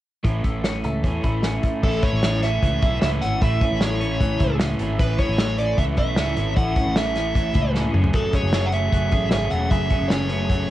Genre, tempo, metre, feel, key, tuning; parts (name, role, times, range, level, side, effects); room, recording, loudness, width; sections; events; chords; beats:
jangly indie pop; 152 BPM; 4/4; straight; A major; A4 = 441 Hz
crunchy overdriven guitar; accompaniment; 0.2-10.7 s; F#2 to G#4; -28 LUFS; right 3 dB; cassette tape
twelve-string electric guitar; arpeggios; 0.2-10.7 s; F#2 to G#4; -27 LUFS; left 2 dB; phaser, cassette tape
vintage muted fingered electric bass; bass; 0.2-10.7 s; E1 to E2; -25 LUFS; equal
loose indie drum kit; drums; 0.2-10.6 s; crash cymbal, hi-hat, kick drum, snare drum, toms; -22 LUFS; equal; cassette tape
dark smooth lead guitar; melody; 1.8-10.7 s; A4 to F#5; -26 LUFS; right 1 dB; overdrive
light reverb; home recording on cassette; -19 LUFS; side -14 dB against mid
0.2-1.8 A section; 1.8-10.7 B section
drum fill 7.7-8.1
0.2 A; 7.9 F#madd9
| 0.25 0.65 1.04 1.44 | 1.84 2.23 2.63 3.02 | 3.42 3.81 4.20 4.60 | 4.99 5.38 5.78 6.17 | 6.57 6.96 7.35 7.75 | 8.14 8.53 8.93 9.32 | 9.71 10.11 10.50